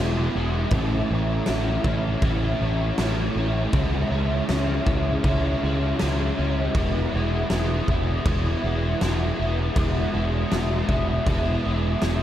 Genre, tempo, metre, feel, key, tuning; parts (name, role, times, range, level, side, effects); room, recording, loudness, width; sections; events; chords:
rock, shoegaze and dream pop; 80 BPM; 4/4; straight; E major; A4 = 440 Hz
biting overdriven guitar; riff; 0.0-12.2 s; A2 to E4; -25 LUFS; equal; ensemble chorus
growling fingered electric bass; bass; 0.0-12.2 s; E1 to C#2; -25 LUFS; equal; overdrive
huge arena drum kit; drums; 0.7-12.2 s; crash cymbal, kick drum, snare drum; -27 LUFS; equal
moderate lush hall reverb, RT60 1.7 s, small room ambience; dreamy mix soaked in reverb, cassette tape; -21 LUFS; side -12 dB against mid
0.0-12.2 A section
0.0 E; 0.7 A; 3.7 C#m; 6.8 E